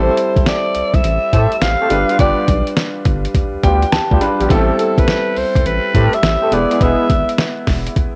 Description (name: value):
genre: R&B, new jack swing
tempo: 104 BPM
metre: 4/4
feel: swing 66% on 16ths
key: A minor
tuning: A4 = 440 Hz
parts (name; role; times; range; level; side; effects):
- growling alto saxophone; melody; 0.0-7.4 s; A4 to F5; -21 LUFS; equal; cassette tape
- bright concert grand piano; accompaniment; 0.0-8.2 s; G3 to B5; -22 LUFS; equal; none
- mellow horn section; stabs; 0.0-7.1 s; G3 to A4; -24 LUFS; equal; none
- round analog bass; bass; 0.0-7.9 s; E1 to A2; -21 LUFS; equal; none
- dusty soul sampler-style drum kit; drums; 0.2-8.1 s; hi-hat, kick drum, snare drum; -19 LUFS; equal; cassette tape
room: light reverb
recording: home recording on cassette, nothing above 10.3 kHz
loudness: -15 LUFS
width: mono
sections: 0.0-8.2 A section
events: grand piano fill 3.3-4.5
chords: 0.0 Am7; 1.9 G7; 4.5 Am7; 6.5 E